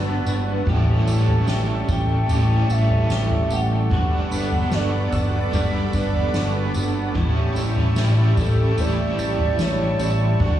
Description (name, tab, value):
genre	dream pop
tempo	74 BPM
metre	4/4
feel	straight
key	unclear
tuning	A4 = 442 Hz
part	overdriven electric guitar	accompaniment	0.0-10.6 s	G2 to F#4	-28 LUFS	right 4 dB	tremolo, ensemble chorus
part	warm analog pad	sustained chords	0.0-10.6 s	F#4 to D6	-30 LUFS	right 3 dB	chorus, tremolo
part	semi-hollow electric guitar	arpeggios	0.0-10.6 s	A2 to G4	-26 LUFS	left 2 dB	analog chorus, digital delay
part	fat analog bass	bass	0.0-10.6 s	G1 to D2	-22 LUFS	equal	none
part	glassy synth bell	texture	0.0-10.6 s	B5 to B6	-42 LUFS	right 1 dB	none
part	soft-mallet drum kit	drums	0.3-10.6 s	kick drum, snare drum, tambourine, toms	-24 LUFS	equal	none
part	hollow clarinet-like synth lead	melody	1.9-10.6 s	A4 to G5	-28 LUFS	right 1 dB	chorus, digital delay
room	light reverb, small room ambience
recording	played on a big sound system in a bare room, stone room reverb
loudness	-18 LUFS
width	side -12 dB against mid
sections	0.0-10.6 A section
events	none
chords	0.0 Gmaj7; 0.7 A7; 3.9 Gmaj7; 7.2 A7